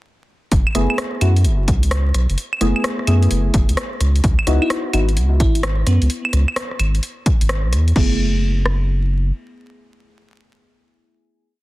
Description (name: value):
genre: UK garage, two-step garage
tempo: 129 BPM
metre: 4/4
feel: swing 65% on 16ths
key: F# minor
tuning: A4 = 440 Hz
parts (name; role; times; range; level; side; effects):
- saturated sub bass; bass; 0.5-9.3 s; F#1 to F#2; -16 LUFS; equal; none
- punchy analog drum machine; drums; 0.5-8.8 s; kick drum, rim click; -17 LUFS; equal; soft clipping on snare
- punchy analog drum machine; drums; 0.5-8.1 s; claves, crash cymbal, hi-hat, rim click; -24 LUFS; equal; soft clipping on snare
- deep mellow chord stab; stabs; 0.7-5.0, 8.0-11.6 s; A3 to G#4; -22 LUFS; equal; chorus, phaser, tape echo
- bell-like FM electric piano; melody; 4.6-6.1 s; B3 to E4; -26 LUFS; right 1 dB; chorus, tremolo, tape echo
room: digital ambience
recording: dense, heavily limited modern master, vinyl crackle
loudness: -15 LUFS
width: side -18 dB against mid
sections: 0.5-8.0 drop; 8.0-11.6 final chord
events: drop 0.5-8.0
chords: 0.5 F#m11; 4.0 C#m11; 8.0 F#m11